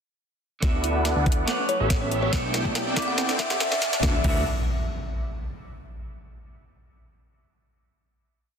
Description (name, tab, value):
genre	future bass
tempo	141 BPM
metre	4/4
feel	half-time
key	D major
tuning	A4 = 440 Hz
part	clean electric guitar	accompaniment	0.6-4.4 s	B2 to F#5	-32 LUFS	right 2 dB	sidechain pumping, dub echo
part	soft round pluck	arpeggios	0.6-4.4 s	B3 to G4	-36 LUFS	right 3 dB	analog chorus, sidechain pumping, dub echo
part	supersaw chords	riff	0.6-4.4 s	B3 to G5	-29 LUFS	equal	phaser, sidechain pumping, low-pass filter
part	fat analog bass	bass	0.6-4.4 s	A1 to D2	-29 LUFS	equal	sidechain pumping
part	electronic kick drum	drums	0.6-4.3 s	none	-24 LUFS	equal	none
part	trap drum kit	drums	0.6-4.3 s	crash cymbal, hi-hat, snare drum	-29 LUFS	left 1 dB	high-pass filter on snare, high-pass filter on hats, high-pass filter on cymbals
part	riser and impact	sound effects	1.7-5.7 s	none	-32 LUFS	equal	none
part	kalimba	melody	1.7-4.0 s	C#5 to F#5	-30 LUFS	left 2 dB	sidechain pumping, low-pass filter, tape echo
room	moderate lush hall reverb, RT60 2.0 s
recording	dense, heavily limited modern master, high-pass filter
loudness	-22 LUFS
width	side -7 dB against mid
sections	0.6-4.0 build; 4.0-5.7 final chord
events	build-up 0.6-4.0; drum fill 0.6-4.0; filter sweep on supersaw synth 0.6-4.0; filter sweep 0.6-4.0; riser 1.7-4.0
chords	0.6 D69; 1.5 A13; 2.3 G6/B; 3.0 C69; 4.0 D69